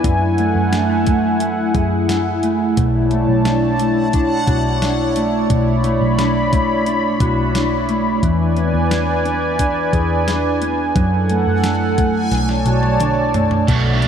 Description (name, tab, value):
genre	dream pop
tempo	88 BPM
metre	4/4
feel	straight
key	B dorian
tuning	A4 = 440 Hz
part	warm analog pad	sustained chords	0.0-14.1 s	A3 to C#6	-19 LUFS	left 1 dB	chorus
part	mellow electric guitar	arpeggios	0.0-14.1 s	B2 to G#4	-20 LUFS	right 1 dB	lush chorus, ping-pong delay
part	vintage muted picked electric bass	bass	0.0-14.1 s	B1 to F#2	-21 LUFS	equal	none
part	crisp 8-bit digital drum machine	drums	0.0-14.1 s	hi-hat, kick drum, snare drum, toms	-22 LUFS	equal	none
part	backwards swelling texture	texture	3.8-4.6, 11.6-14.1 s	F#5 to A5	-31 LUFS	left 2 dB	built-in reverb, ping-pong delay
part	overdriven semi-hollow guitar	accompaniment	13.7-14.1 s	B2 to F#4	-19 LUFS	right 5 dB	harmonic tremolo, ensemble chorus
room	wet cathedral reverb, RT60 5.9 s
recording	dreamy mix soaked in reverb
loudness	-14 LUFS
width	side -8 dB against mid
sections	0.0-13.7 A section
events	drum fill 12.3-13.7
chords	0.0 F#m9; 2.8 Bm11; 8.2 E7; 11.0 F#m9; 12.3 Bm11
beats	| 0.05 0.73 1.41 2.09 | 2.77 3.46 4.14 4.82 | 5.50 6.18 6.87 7.55 | 8.23 8.91 9.59 10.27 | 10.96 11.64 12.32 13.00 | 13.68